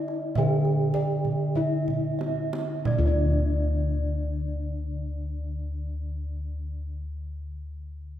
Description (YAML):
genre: Javanese gamelan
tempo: 44-54 BPM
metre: 4/4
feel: straight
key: unclear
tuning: A4 = 443 Hz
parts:
  - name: gamelan-type bronze metallophone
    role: melody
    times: 0.0-7.0 s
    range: D4 to G4+30c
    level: -33 LUFS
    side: equal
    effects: none
  - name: large celesta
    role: second line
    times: 0.0-6.8 s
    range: D5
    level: -38 LUFS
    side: left 2 dB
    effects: none
  - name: gamelan-type bronze metallophone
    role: arpeggios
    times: 0.0-7.0 s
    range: D5 to G5+30c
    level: -36 LUFS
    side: right 6 dB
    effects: none
  - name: gamelan-type bossed gongs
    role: bass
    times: 0.0-6.9 s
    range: D2 to E4-50c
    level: -27 LUFS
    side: left 1 dB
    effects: none
  - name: kendang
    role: percussion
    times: 0.1-3.5 s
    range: none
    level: -32 LUFS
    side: right 4 dB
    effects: none
  - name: gamelan-type bossed gongs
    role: arpeggios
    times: 0.4-7.0 s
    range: D5 to E5-50c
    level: -37 LUFS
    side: left 4 dB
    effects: none
room: wet church reverb, RT60 3.4 s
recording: recorded in a church or concert hall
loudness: -25 LUFS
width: side -11 dB against mid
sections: 0.0-2.9 A section; 2.9-8.2 B section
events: slowing down 0.0-2.9; drum fill 1.2-2.9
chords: none